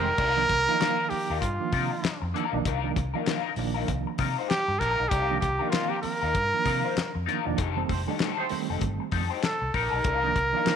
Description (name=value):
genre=funk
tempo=97 BPM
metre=4/4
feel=swing 60% on 16ths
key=C dorian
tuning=A4 = 440 Hz
part: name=breathy trumpet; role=melody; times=0.0-10.8 s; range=F4 to Bb4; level=-26 LUFS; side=right 2 dB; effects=none
part: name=warm horn section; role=second line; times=0.0-0.1, 7.9-8.6 s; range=A3 to C5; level=-36 LUFS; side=right 12 dB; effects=none
part: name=electric guitar at the edge of break-up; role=accompaniment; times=0.0-10.8 s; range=Eb4 to C5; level=-32 LUFS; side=left 12 dB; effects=wah
part: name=reed electric piano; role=stabs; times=0.0-10.8 s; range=Eb3 to Eb4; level=-33 LUFS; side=right 11 dB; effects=fast tremolo
part: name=vintage muted fingered electric bass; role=bass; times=0.0-10.5 s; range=E1 to C3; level=-32 LUFS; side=equal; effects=none
part: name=cloth-damped thuddy drum kit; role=drums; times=0.2-10.8 s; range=crash cymbal, handclaps, hi-hat, kick drum, snare drum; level=-31 LUFS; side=left 4 dB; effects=none
room=moderate echo chamber reverb, RT60 2.2 s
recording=1960s-style stereo with parts hard left and right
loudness=-24 LUFS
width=side -7 dB against mid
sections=0.2-10.8 A section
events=band accent 0.0, 7.6-10.0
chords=0.2 Cm11; 7.6 F9; 10.0 Cm11